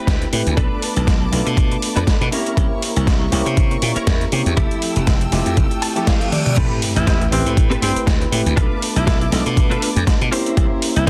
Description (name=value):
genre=nu-disco, nu disco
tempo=120 BPM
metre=4/4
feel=swing 56% on 16ths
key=A minor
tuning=A4 = 440 Hz
part: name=tine electric piano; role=accompaniment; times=0.0-11.1 s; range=F3 to C5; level=-26 LUFS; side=equal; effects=overdrive, sidechain pumping, slapback echo
part: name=warm symphonic violin section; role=sustained chords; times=0.0-11.1 s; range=A4 to E6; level=-32 LUFS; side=equal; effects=sidechain pumping
part: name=direct-recorded clean electric guitar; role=riff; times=0.0-11.1 s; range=C4 to A5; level=-28 LUFS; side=equal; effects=ensemble chorus, slapback echo
part: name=glassy slap bass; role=bass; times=0.1-11.1 s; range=F1 to C3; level=-22 LUFS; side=equal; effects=none
part: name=dusty soul sampler-style drum kit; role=drums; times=0.1-11.1 s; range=crash cymbal, hi-hat, snare drum, toms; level=-26 LUFS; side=equal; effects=overdrive, small room ambience
part: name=electronic kick drum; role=drums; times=0.1-11.1 s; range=none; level=-20 LUFS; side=equal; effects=overdrive, small room ambience
part: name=reverse cymbal and sub drop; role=sound effects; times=5.8-8.6 s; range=none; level=-29 LUFS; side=equal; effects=none
part: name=breathy tenor saxophone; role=melody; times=7.0-11.1 s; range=C4 to E4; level=-28 LUFS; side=equal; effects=tape echo
room=light reverb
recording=dense, heavily limited modern master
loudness=-18 LUFS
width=mono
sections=0.0-6.6 A section; 6.6-11.1 B section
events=clean electric guitar fill 5.6-6.6; reverse cymbal 5.8-6.6; drum fill 6.3; drop 6.6-11.1; impact 6.6-8.6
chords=0.0 Am9; 0.6 Bm7b5; 2.3 C7b9; 4.6 Fmaj9; 6.6 Am9; 8.6 Bm7b5; 10.3 C7b9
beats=0.07 | 0.57 1.07 1.57 2.07 | 2.57 3.07 3.57 4.07 | 4.57 5.07 5.57 6.07 | 6.57 7.07 7.57 8.07 | 8.57 9.07 9.57 10.07 | 10.57 11.07